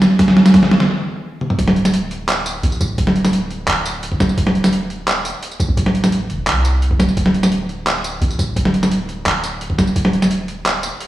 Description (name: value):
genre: half-time drum and bass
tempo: 172 BPM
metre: 4/4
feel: half-time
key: unclear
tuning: A4 = 439 Hz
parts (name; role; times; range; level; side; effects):
- boom bap sampler-style drum kit; drums; 0.0-11.1 s; handclaps, hi-hat, snare drum, tambourine, toms; -15 LUFS; equal; overdrive
- electronic kick drum; drums; 0.2-10.0 s; none; -19 LUFS; equal; overdrive
- long sustained 808-style bass; bass; 1.6-10.9 s; D1 to C2; -22 LUFS; equal; none
room: wet echo chamber reverb, RT60 1.3 s, digital ambience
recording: played on a big sound system in a bare room, large studio reverb, small room ambience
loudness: -14 LUFS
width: side -14 dB against mid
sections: 0.0-1.6 A section; 1.6-11.1 B section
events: build-up 0.0-1.6; drum fill 0.0-0.9, 1.4; stop 0.9-1.6; drop 1.6-11.1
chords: none